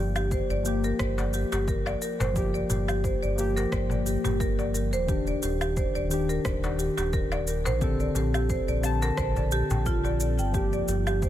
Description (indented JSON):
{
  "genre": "organic downtempo",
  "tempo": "88 BPM",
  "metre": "4/4",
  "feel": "swing 54% on 16ths",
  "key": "G minor",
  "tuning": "A4 = 438 Hz",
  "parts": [
    { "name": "muted felt-like synth keys", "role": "accompaniment", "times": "0.0-11.3 s", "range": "D3 to A5", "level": "-31 LUFS", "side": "left 4 dB", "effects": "chorus, sidechain pumping, digital delay" },
    { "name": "marimba with medium hard mallets", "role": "arpeggios", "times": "0.0-11.3 s", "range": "F4 to G5", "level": "-30 LUFS", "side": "right 2 dB", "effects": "digital delay" },
    { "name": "round analog bass", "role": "bass", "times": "0.0-11.3 s", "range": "Eb1 to Bb1", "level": "-29 LUFS", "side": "equal", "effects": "tube saturation, sidechain pumping" },
    { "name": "electronic woodblock, shaker and rim click", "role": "drums", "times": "0.2-11.3 s", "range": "none", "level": "-38 LUFS", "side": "left 1 dB", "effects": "overdrive" },
    { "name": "electronic kick drum", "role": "drums", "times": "0.3-11.3 s", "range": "none", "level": "-31 LUFS", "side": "equal", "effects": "overdrive" },
    { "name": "darbuka", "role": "percussion", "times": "1.2-11.0 s", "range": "none", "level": "-36 LUFS", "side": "left 2 dB", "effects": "none" },
    { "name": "ethereal airy pad", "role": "sustained chords", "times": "10.9-11.3 s", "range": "G3 to A5", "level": "-51 LUFS", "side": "right 3 dB", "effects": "none" }
  ],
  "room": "digital ambience",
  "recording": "none",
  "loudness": "-24 LUFS",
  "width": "side -12 dB against mid",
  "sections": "0.0-11.3 A section",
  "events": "none",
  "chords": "0.0 Gm7; 5.1 Ebmaj7; 7.8 Bbmaj9"
}